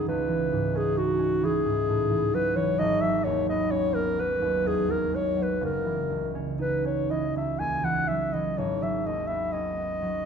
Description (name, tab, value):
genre	classical, impressionist duo for clarinet and harp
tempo	60-67 BPM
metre	3/4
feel	rubato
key	unclear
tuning	A4 = 440 Hz
part	mellow clarinet	melody	0.0-10.3 s	F#4 to G#5	-26 LUFS	left 2 dB	none
part	concert harp	accompaniment	0.0-10.3 s	F#1 to D#4	-28 LUFS	right 3 dB	none
room	moderate recital hall reverb, RT60 1.3 s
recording	none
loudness	-24 LUFS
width	side -6 dB against mid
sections	0.0-10.3 A section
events	none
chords	0.1 C#m9; 2.8 G#m7; 5.6 F#5; 8.6 G#m7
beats	| 0.07 0.97 1.88 | 2.79 3.71 4.65 | 5.63 6.62 7.61 | 8.59 9.54